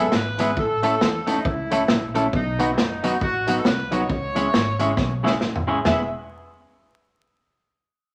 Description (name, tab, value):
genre	ska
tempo	136 BPM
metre	4/4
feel	swing 60% on 8ths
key	E major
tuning	A4 = 440 Hz
part	warm horn section	melody	0.0-6.1 s	D#4 to E5	-29 LUFS	equal	none
part	electric guitar at the edge of break-up	accompaniment	0.0-6.0 s	F#3 to A4	-28 LUFS	equal	spring reverb
part	clear upright piano	stabs	0.0-6.1 s	D#4 to E5	-30 LUFS	equal	none
part	upright bass	bass	0.0-6.1 s	E1 to E2	-34 LUFS	equal	none
part	electric guitar at the edge of break-up	riff	0.1-5.6 s	F#2 to E3	-34 LUFS	equal	none
part	vintage drum kit	drums	0.1-6.0 s	hi-hat, kick drum, snare drum, toms	-26 LUFS	equal	none
room	wet small room reverb, RT60 0.5 s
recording	vinyl crackle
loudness	-22 LUFS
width	mono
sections	0.0-5.9 A section; 5.9-7.6 B section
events	drum fill 5.0-5.9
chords	0.0 E; 0.6 A; 2.3 B; 4.1 C#m; 5.9 E